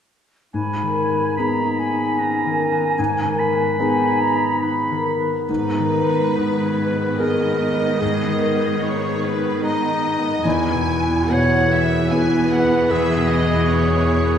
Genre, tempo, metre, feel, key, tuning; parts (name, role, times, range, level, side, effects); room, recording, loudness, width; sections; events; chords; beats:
cinematic, emotional film score for orchestra; 74 BPM; 3/4; rubato; G# minor; A4 = 440 Hz
warm clarinet; second line; 0.5-14.4 s; C#4 to C#5; -23 LUFS; equal
warm oboe; second line; 0.5-5.1 s; G#5 to B5; -26 LUFS; right 2 dB
felt-muted upright piano; accompaniment; 0.5-14.4 s; E2 to G#4; -23 LUFS; equal
concert harp; arpeggios; 0.5-14.4 s; E2 to B4; -24 LUFS; left 3 dB
concert flute; second line; 0.6-5.2 s; G#5 to B5; -23 LUFS; equal
clear symphonic violin section; second line; 5.5-14.4 s; B4 to G#5; -26 LUFS; equal
clear symphonic viola section; accompaniment; 5.5-14.4 s; D#3 to B3; -26 LUFS; right 2 dB
rich symphonic cello section; bass; 5.5-14.4 s; E2 to G#2; -25 LUFS; right 2 dB
wet scoring stage reverb, RT60 1.9 s; recorded in a church or concert hall, lossy compression artefacts; -17 LUFS; side -8 dB against mid
0.5-5.5 A section; 5.5-14.4 B section
0.5 G#m; 10.4 E
| 0.55 1.38 2.19 | 2.99 3.79 4.61 | 5.49 6.37 7.19 | 8.01 8.82 9.64 | 10.45 11.31 12.11 | 12.90 13.70